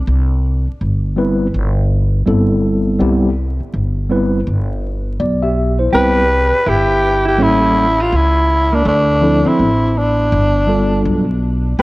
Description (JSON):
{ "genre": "hip hop", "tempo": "82 BPM", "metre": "4/4", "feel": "swing 63% on 16ths", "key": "C major", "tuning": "A4 = 439 Hz", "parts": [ { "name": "upright bass", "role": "bass", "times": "0.0-11.8 s", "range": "G1 to D2", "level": "-16 LUFS", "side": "equal", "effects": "none" }, { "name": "mellow tine electric piano", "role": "accompaniment", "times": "1.2-11.2 s", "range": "F3 to E5", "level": "-17 LUFS", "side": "equal", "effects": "medium stereo tremolo" }, { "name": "mellow electric guitar", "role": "second line", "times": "5.9-11.8 s", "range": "A3 to G4", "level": "-21 LUFS", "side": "right 1 dB", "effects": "none" }, { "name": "growling tenor saxophone", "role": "melody", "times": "6.0-11.8 s", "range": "D4 to B4", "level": "-15 LUFS", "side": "equal", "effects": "tape echo" } ], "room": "light reverb, small room ambience", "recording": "worn, warbling old tape, cassette tape, vinyl crackle, warbly pitch drift", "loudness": "-12 LUFS", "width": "side -20 dB against mid", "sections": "0.0-5.9 A section; 5.9-11.8 B section", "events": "none", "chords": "0.1 Cmaj7; 7.4 A7b9; 8.9 Dm9; 10.3 G9" }